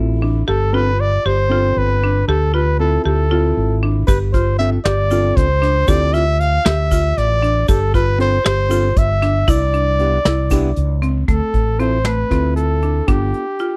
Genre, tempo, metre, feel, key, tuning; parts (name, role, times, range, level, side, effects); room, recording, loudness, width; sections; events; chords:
progressive instrumental, band music in an uneven meter; 233 BPM (eighths); 7/8; straight; D dorian; A4 = 440 Hz
hollow-body jazz guitar; accompaniment; 0.0-13.4 s; B3 to A4; -25 LUFS; equal
buzzing marimba with hard mallets; arpeggios; 0.0-13.8 s; A3 to G4; -26 LUFS; equal
fretless electric bass; bass; 0.0-13.3 s; G1 to D2; -20 LUFS; equal; subtle chorus
mellow trumpet; melody; 0.5-13.8 s; G4 to F5; -22 LUFS; equal; slapback echo
soft brush drum kit; drums; 4.1-13.7 s; hi-hat, kick drum, snare drum; -20 LUFS; equal
tube shaker; percussion; 4.1-10.7 s; -41 LUFS; equal
little or no reverb; dry, close 1970s-style studio recording; -16 LUFS; mono
0.0-11.3 A section; 11.3-13.8 B section
0.5 G9sus4; 2.3 Dm7; 4.1 G9sus4; 5.9 Dm7; 7.7 G9sus4; 9.5 Cmaj9; 11.3 Dm7; 13.1 G7